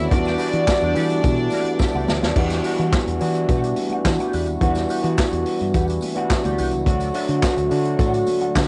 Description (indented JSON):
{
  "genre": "disco",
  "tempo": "107 BPM",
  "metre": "4/4",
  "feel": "straight",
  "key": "E minor",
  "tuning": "A4 = 436 Hz",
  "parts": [
    { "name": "rich chamber string section", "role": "second line", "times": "0.0-2.3 s", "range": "D4 to D5", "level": "-26 LUFS", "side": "equal", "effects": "cassette tape" },
    { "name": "electric guitar with an envelope filter", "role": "accompaniment", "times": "0.0-8.6 s", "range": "D4 to F#5", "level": "-34 LUFS", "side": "equal", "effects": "wah, ensemble chorus, cassette tape" },
    { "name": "overdriven tine electric piano", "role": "accompaniment", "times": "0.0-8.7 s", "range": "D3 to E5", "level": "-28 LUFS", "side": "equal", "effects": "cassette tape" },
    { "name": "mellow French horn section", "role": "sustained chords", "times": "0.0-8.7 s", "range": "D3 to F#4", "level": "-27 LUFS", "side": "equal", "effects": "cassette tape" },
    { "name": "fingered electric bass", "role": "bass", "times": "0.0-8.7 s", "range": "C2 to E3", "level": "-26 LUFS", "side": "equal", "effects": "none" },
    { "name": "vintage drum kit", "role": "drums", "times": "0.1-8.7 s", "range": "crash cymbal, handclaps, hi-hat, kick drum, snare drum", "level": "-25 LUFS", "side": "equal", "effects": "cassette tape" },
    { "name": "congas", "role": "percussion", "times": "0.1-8.5 s", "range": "none", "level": "-39 LUFS", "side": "equal", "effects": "none" },
    { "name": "tambourine", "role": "percussion", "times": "0.2-8.7 s", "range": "none", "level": "-47 LUFS", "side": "equal", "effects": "none" }
  ],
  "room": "light reverb, small room ambience",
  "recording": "home recording on cassette, nothing above 10.7 kHz",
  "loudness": "-20 LUFS",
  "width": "mono",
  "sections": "0.0-2.4 A section; 2.4-8.7 B section",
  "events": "tine electric piano fill 1.5-2.4; drum fill 1.8-2.4",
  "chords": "0.1 Em9; 6.9 D"
}